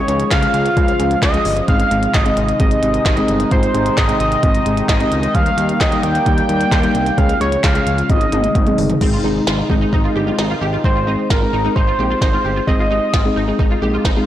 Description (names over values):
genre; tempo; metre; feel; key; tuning
synth-pop; 131 BPM; 4/4; straight; Ab major; A4 = 440 Hz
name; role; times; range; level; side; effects
octave-doubled lead; melody; 0.0-13.6 s; Bb4 to G5; -19 LUFS; right 1 dB; chorus, tape echo
muted felt-like synth keys; accompaniment; 0.0-14.3 s; G3 to Ab4; -20 LUFS; left 2 dB; chorus
sweeping resonant pad; sustained chords; 0.0-10.8 s; C3 to G4; -23 LUFS; equal; chorus, phaser
fat analog bass; bass; 0.1-14.2 s; G1 to Eb2; -22 LUFS; equal; transformer saturation
glitchy drum kit; drums; 0.1-14.2 s; crash cymbal, handclaps, hi-hat, kick drum, snare drum, toms; -18 LUFS; equal; overdrive
wide unison pluck; arpeggios; 9.0-14.2 s; C4 to G4; -24 LUFS; right 1 dB; ensemble chorus, tape echo
room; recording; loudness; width
moderate plate reverb, RT60 2.4 s; blown-out, overdriven recording, overdrive; -13 LUFS; side -12 dB against mid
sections
0.0-9.0 A section; 9.0-10.8 B section; 10.8-14.3 C section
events
drum fill 8.1-9.0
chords
0.0 Db; 1.7 Ab; 5.3 Eb; 7.2 Db; 8.1 Ab